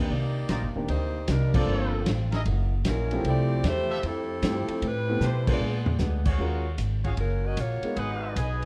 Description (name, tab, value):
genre	jazz, big band swing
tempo	153 BPM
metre	4/4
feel	swing 67% on 8ths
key	unclear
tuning	A4 = 440 Hz
part	clear saxophone section	melody	0.0-8.7 s	F3 to Eb5	-34 LUFS	equal	none
part	warm concert grand piano	accompaniment	0.0-8.0 s	Eb3 to Bb4	-34 LUFS	equal	none
part	upright bass	bass	0.0-8.7 s	Eb1 to B2	-30 LUFS	equal	none
part	picked old ladder-braced acoustic guitar	accompaniment	0.1-6.3 s	F#2 to B4	-41 LUFS	equal	none
part	vintage drum kit	drums	0.1-8.7 s	crash cymbal, hi-hat, kick drum, ride cymbal, snare drum, toms	-32 LUFS	equal	none
part	clear trumpet section	stabs	0.5-8.7 s	Eb4 to Ab5	-38 LUFS	equal	none
room	moderate large studio reverb, RT60 1.1 s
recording	dark, warm production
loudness	-27 LUFS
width	mono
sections	0.0-6.4 A section; 6.4-8.7 B section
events	band accent 1.5, 5.4; drum fill 5.2-6.0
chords	0.1 Cm9; 1.7 Gm11; 2.5 F#13; 3.2 Fmaj9; 4.8 Am9; 5.6 Bb7b9; 6.4 Ebm11; 8.0 Abm7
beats	| 0.10 0.49 0.89 1.28 | 1.67 2.06 2.46 2.85 | 3.24 3.64 4.03 4.42 | 4.82 5.21 5.60 6.00 | 6.39 6.79 7.18 7.57 | 7.97 8.36